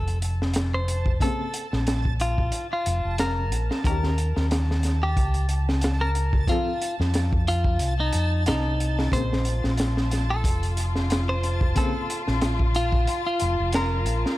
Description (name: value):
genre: trip hop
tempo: 91 BPM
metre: 4/4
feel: swing 55% on 16ths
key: unclear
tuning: A4 = 436 Hz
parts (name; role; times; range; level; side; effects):
- clean electric guitar; melody; 0.0-14.3 s; Eb4 to C5; -29 LUFS; equal; tape echo
- fingered electric bass; bass; 0.0-14.2 s; F1 to F2; -24 LUFS; equal; tube saturation
- backwards swelling texture; texture; 0.2-14.4 s; A5; -37 LUFS; right 1 dB; built-in reverb
- crunchy breakbeat drum kit; drums; 0.1-14.4 s; hi-hat, kick drum, snare drum; -26 LUFS; equal; none
- felt-muted upright piano; accompaniment; 1.2-11.9 s; Db3 to A4; -32 LUFS; left 3 dB; tremolo, low-pass filter, tape echo
- dark chamber string section; sustained chords; 9.1-14.4 s; F4; -32 LUFS; left 3 dB; none
room: little or no reverb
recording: none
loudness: -22 LUFS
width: side -16 dB against mid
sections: 0.0-14.4 A section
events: filter sweep on felt piano 0.0-14.4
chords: 0.0 Bb5; 3.8 Eb7(no3); 6.5 F; 9.1 Bb5